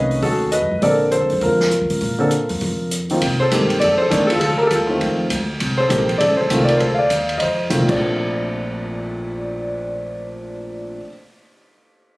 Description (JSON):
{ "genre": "jazz piano trio", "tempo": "200 BPM", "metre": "4/4", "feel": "swing 62% on 8ths", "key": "Bb major", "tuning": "A4 = 438 Hz", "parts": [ { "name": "warm concert grand piano", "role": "melody", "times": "0.0-11.1 s", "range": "Bb2 to F5", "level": "-18 LUFS", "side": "equal", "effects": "plate reverb" }, { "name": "upright bass", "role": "bass", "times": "0.0-11.0 s", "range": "Eb1 to Bb2", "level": "-24 LUFS", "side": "equal", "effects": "none" }, { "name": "open jazz drum kit", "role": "drums", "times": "0.1-7.9 s", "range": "crash cymbal, hi-hat, kick drum, ride cymbal, snare drum", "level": "-26 LUFS", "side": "equal", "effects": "none" } ], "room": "moderate studio reverb, RT60 0.7 s", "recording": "recorded on a phone in the room, club reverb", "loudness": "-16 LUFS", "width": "side -21 dB against mid", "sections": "0.0-3.2 A section; 3.2-8.0 B section; 8.0-10.4 C section", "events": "none", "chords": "0.0 B13; 0.8 Bbmaj9; 3.2 Cm7; 3.8 F7; 4.4 Dm; 5.0 F7; 5.6 Cm7; 6.2 F7; 6.8 Dm; 7.4 F7; 7.9 Bbmaj9", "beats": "0.22 0.52 | 0.82 1.12 1.42 1.72 | 2.02 2.31 2.61 2.91 | 3.21 3.51 3.81 4.11 | 4.41 4.71 5.01 5.31 | 5.61 5.91 6.21 6.51 | 6.81 7.11 7.41 7.71 | 8.01 8.30 8.60 8.90 | 9.20 9.50 9.80 10.10" }